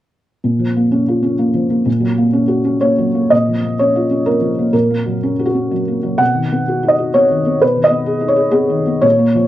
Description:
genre	neoclassical minimalist piano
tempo	126 BPM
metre	3/4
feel	uneven beats, rubato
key	unclear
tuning	A4 = 441 Hz
part	felt-muted upright piano	solo	0.4-9.5 s	A#2 to F#5	-12 LUFS	equal	none
room	moderate studio reverb, RT60 0.8 s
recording	worn, warbling old tape, cassette tape, warbly pitch drift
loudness	-13 LUFS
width	side -13 dB against mid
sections	0.4-3.3 A section; 3.3-9.5 B section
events	none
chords	0.4 A#m; 1.9 F#/A#; 3.3 A#m; 4.7 F#/A#; 6.2 B; 7.6 G#m/B

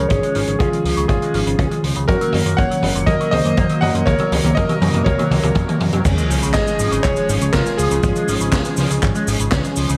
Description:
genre	italo disco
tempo	121 BPM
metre	4/4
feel	straight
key	Db major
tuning	A4 = 440 Hz
part	bright electric grand piano	melody	0.0-8.7 s	F4 to Gb5	-23 LUFS	equal	low-pass filter, tape echo
part	warm analog pad	sustained chords	0.0-10.0 s	C3 to Bb4	-27 LUFS	equal	chorus
part	electric guitar with an envelope filter	arpeggios	0.0-10.0 s	Bb2 to Db4	-30 LUFS	equal	phaser, low-pass filter, digital delay
part	fat analog bass	bass	0.0-10.0 s	Gb1 to Gb2	-24 LUFS	equal	none
part	kick drum	drums	0.1-9.6 s	none	-24 LUFS	equal	none
part	street-band drum kit	drums	0.1-10.0 s	cabasa, crash cymbal, handclaps, hi-hat, snare drum, toms	-24 LUFS	equal	none
part	sub drop	sound effects	6.1-8.0 s	none	-28 LUFS	equal	none
room	light reverb, small room ambience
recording	vinyl crackle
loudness	-17 LUFS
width	mono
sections	0.0-6.1 A section; 6.1-10.0 B section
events	drum fill 0.0-6.1; filter sweep on analog synth pad 0.0-6.1; filter sweep on electric grand piano 0.0-6.1; impact 6.1-8.0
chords	0.0 Db; 2.1 Gb; 6.1 Db

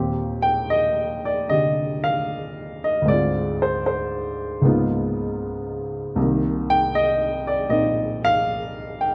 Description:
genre	solo jazz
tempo	77 BPM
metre	4/4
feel	swing 69% on 8ths, rubato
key	Eb major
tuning	A4 = 440 Hz
part	warm baby grand piano	solo	0.0-9.1 s	C2 to G5	-22 LUFS	equal	none
room	light reverb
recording	close, detailed microphones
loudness	-22 LUFS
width	mono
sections	0.0-9.1 A section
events	none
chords	0.0 Eb6; 3.1 Dm7b5; 4.6 Db13; 6.2 Cm7

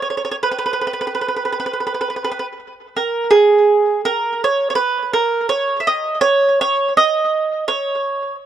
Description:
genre	italian folk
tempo	83 BPM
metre	4/4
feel	rubato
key	unclear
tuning	A4 = 441 Hz
part	mandolin	solo	0.0-8.3 s	G#4 to E5	-15 LUFS	right 3 dB	tape echo
room	light reverb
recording	dry, close 1970s-style studio recording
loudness	-15 LUFS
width	side -10 dB against mid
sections	0.0-8.5 A section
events	none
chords	none

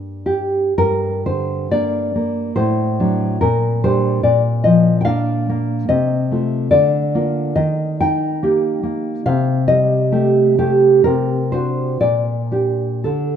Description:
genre	romantic piece for solo classical guitar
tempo	53-73 BPM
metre	2/4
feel	rubato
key	G minor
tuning	A4 = 438 Hz
part	nylon-string guitar	solo	0.0-13.4 s	G2 to G5	-15 LUFS	equal	none
room	moderate recital hall reverb, RT60 1.9 s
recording	minimal, uncompressed stereo recording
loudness	-15 LUFS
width	side -8 dB against mid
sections	0.8-13.4 A section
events	none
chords	0.0 Gm; 2.5 D7/A; 3.4 Gm/Bb; 4.2 Bb; 5.9 F7/C; 6.7 Bb/D; 7.5 Eb; 9.2 Am7b5/C; 11.0 D7/C; 12.0 Gm/Bb

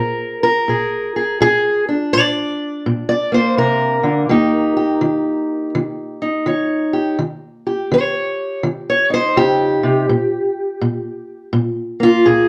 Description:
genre	acoustic country blues, solo or duo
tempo	83 BPM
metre	4/4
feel	swing 64% on 8ths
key	unclear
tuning	A4 = 440 Hz
part	fingerpicked steel-string acoustic guitar	solo	0.0-12.5 s	Bb2 to D5	-17 LUFS	equal	none
room	moderate studio reverb, RT60 0.8 s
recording	dark, warm production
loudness	-17 LUFS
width	mono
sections	0.0-12.5 A section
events	steel-string acoustic guitar solo 0.0-12.5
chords	0.0 Bb7; 4.3 Eb7; 10.1 N.C.

